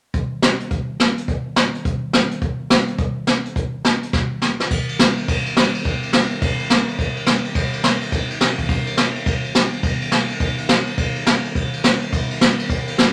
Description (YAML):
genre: rock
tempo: 210 BPM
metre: 4/4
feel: swing 63% on 8ths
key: none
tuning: none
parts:
  - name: jazz brush drum kit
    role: drums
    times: 0.1-13.1 s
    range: crash cymbal, hi-hat, kick drum, ride cymbal, snare drum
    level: -19 LUFS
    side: equal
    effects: none
room: light reverb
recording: none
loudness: -19 LUFS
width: mono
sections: 0.1-4.7 A section; 4.7-13.1 B section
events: drum fill 4.1-4.7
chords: none